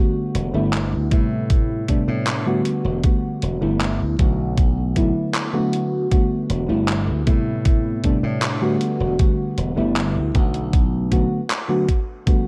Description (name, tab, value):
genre	vaporwave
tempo	78 BPM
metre	4/4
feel	straight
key	E minor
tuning	A4 = 439 Hz
part	mellow FM electric piano	accompaniment	0.0-12.5 s	C3 to F#4	-24 LUFS	equal	lush chorus, cassette tape, tape echo
part	slap bass	bass	0.3-11.3 s	E1 to A2	-26 LUFS	equal	none
part	detuned 8-bit digital drum machine	drums	0.3-12.4 s	handclaps, hi-hat	-29 LUFS	equal	gated reverb
part	electronic kick drum	drums	1.1-12.4 s	none	-20 LUFS	equal	none
room	digital ambience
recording	none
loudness	-20 LUFS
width	mono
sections	0.0-12.5 A section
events	none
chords	0.0 Em11; 1.1 Am9; 2.7 Em11; 4.6 Bm7; 6.1 Em11; 7.3 Am9; 8.8 Em11; 10.7 Bm7